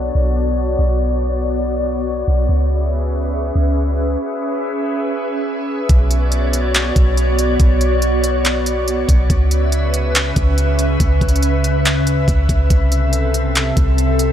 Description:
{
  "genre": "hip hop, atmospheric cloud-rap",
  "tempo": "141 BPM",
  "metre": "4/4",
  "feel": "half-time",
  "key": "B dorian",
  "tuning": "A4 = 443 Hz",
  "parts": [
    { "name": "glassy FM pad", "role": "sustained chords", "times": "0.0-14.3 s", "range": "C3 to E5", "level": "-19 LUFS", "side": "equal", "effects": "ensemble chorus, built-in reverb, sidechain pumping" },
    { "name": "soft 808-style bass", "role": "bass", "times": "0.0-14.3 s", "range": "B1 to D2", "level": "-17 LUFS", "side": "equal", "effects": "none" },
    { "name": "smooth R&B drum kit", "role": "drums", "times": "5.9-14.3 s", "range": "handclaps, hi-hat, kick drum", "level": "-17 LUFS", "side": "equal", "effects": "none" }
  ],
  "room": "light reverb",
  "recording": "low-pass filter",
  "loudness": "-14 LUFS",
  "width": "side -10 dB against mid",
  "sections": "0.0-5.9 A section; 5.9-14.3 B section",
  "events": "filter sweep 0.0-5.9; break 4.2-5.9",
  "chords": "0.0 Bmadd9; 2.5 C#m7; 5.9 Bmadd9; 9.3 C#m7; 12.7 C6"
}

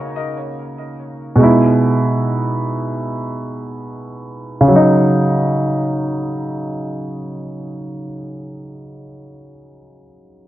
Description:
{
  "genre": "hip hop",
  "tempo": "free time",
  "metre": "none",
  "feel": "none",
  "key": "Eb phrygian",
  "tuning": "A4 = 440 Hz",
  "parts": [
    { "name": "dark concert grand piano", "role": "accompaniment", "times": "0.0-10.5 s", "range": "B2 to Gb4", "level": "-16 LUFS", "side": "right 1 dB", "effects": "none" }
  ],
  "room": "light reverb, small room ambience",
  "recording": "worn, warbling old tape, cassette tape, warbly pitch drift, low-pass filter",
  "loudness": "-14 LUFS",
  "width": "side -14 dB against mid",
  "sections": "0.0-4.7 A section; 4.7-8.0 B section",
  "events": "filter sweep 0.0-4.7",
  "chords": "0.0 Ebm7; 1.4 Emaj7; 4.7 Ebm7"
}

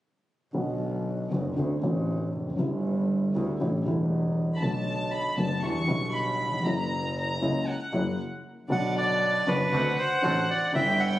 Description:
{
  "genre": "tango",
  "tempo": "118 BPM",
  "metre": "4/4",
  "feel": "rubato",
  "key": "B minor",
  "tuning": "A4 = 440 Hz",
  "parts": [
    { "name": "dark upright piano", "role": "accompaniment", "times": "0.5-11.2 s", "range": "E1 to F#4", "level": "-28 LUFS", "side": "left 1 dB", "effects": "none" },
    { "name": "rich double bass", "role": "bass", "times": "0.5-11.2 s", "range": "E1 to E2", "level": "-31 LUFS", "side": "right 1 dB", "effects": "none" },
    { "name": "dark chamber violin section", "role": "second line", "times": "4.5-11.2 s", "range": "D5 to C#6", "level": "-31 LUFS", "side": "equal", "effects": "none" },
    { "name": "bandoneon", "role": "melody", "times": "8.7-11.2 s", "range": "B4 to F#5", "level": "-25 LUFS", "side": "right 1 dB", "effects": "none" },
    { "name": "bandoneon", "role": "stabs", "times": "8.7-11.2 s", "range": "B3 to G4", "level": "-36 LUFS", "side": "equal", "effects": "none" }
  ],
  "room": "moderate scoring stage reverb, RT60 1.7 s",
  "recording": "recorded on a phone in the room, studio reverb",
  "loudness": "-25 LUFS",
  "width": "side -15 dB against mid",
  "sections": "0.6-8.7 A section; 8.7-11.2 B section",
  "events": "stop 8.2-8.7",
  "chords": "0.6 Bm; 1.6 D7; 2.6 G6; 3.6 A7sus4; 4.6 Bm7; 5.6 Em7; 6.7 F#7; 8.7 Bm; 9.7 D7"
}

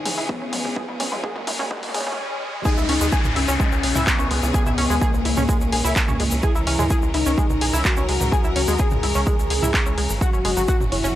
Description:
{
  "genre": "melodic techno",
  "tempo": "127 BPM",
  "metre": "4/4",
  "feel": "straight",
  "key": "unclear",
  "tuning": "A4 = 439 Hz",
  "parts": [
    { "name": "soft octave-layered synth lead", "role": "melody", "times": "0.0-11.2 s", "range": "A#3 to G#4", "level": "-26 LUFS", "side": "left 2 dB", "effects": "chorus, phaser, sidechain pumping, tape echo" },
    { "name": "clear studio string section", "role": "sustained chords", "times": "0.0-11.2 s", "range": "G#2 to A#4", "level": "-30 LUFS", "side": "equal", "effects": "sidechain pumping" },
    { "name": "tight sequencer bass", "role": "bass", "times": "0.0-11.1 s", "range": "F#1 to D#2", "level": "-25 LUFS", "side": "right 1 dB", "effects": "sidechain pumping, high-pass filter" },
    { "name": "riser, swell and downlifter", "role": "sound effects", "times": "0.0-6.4 s", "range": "none", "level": "-30 LUFS", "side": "left 1 dB", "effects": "none" },
    { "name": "tight sequenced synth", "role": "arpeggios", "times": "0.1-11.1 s", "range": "F#3 to G#5", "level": "-27 LUFS", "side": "equal", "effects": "chorus, sidechain pumping, tape echo" },
    { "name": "punchy analog drum machine", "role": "drums", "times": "0.1-11.0 s", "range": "handclaps, hi-hat, toms", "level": "-26 LUFS", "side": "equal", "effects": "sidechain pumping on toms, sidechain pumping on hats" },
    { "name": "electronic kick drum", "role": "drums", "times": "0.3-10.8 s", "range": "none", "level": "-21 LUFS", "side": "right 1 dB", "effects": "overdrive" },
    { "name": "egg shaker", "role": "percussion", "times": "2.7-11.1 s", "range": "none", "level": "-33 LUFS", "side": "left 1 dB", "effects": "none" }
  ],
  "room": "little or no reverb",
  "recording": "dry, gritty hardware recording, transformer saturation, cassette tape, high-pass filter",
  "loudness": "-18 LUFS",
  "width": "side -13 dB against mid",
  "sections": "0.0-2.7 A section; 2.7-11.2 B section",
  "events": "build-up 0.0-2.7; drum fill 0.0-2.2; riser 0.0-2.7; filter sweep on synth arpeggio sound 0.0-2.7; filter sweep on soft synth lead 0.0-2.7; swell 1.7-2.7; break 2.2-2.7; drop 2.7-11.2",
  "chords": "0.0 C#m; 10.2 F#sus2"
}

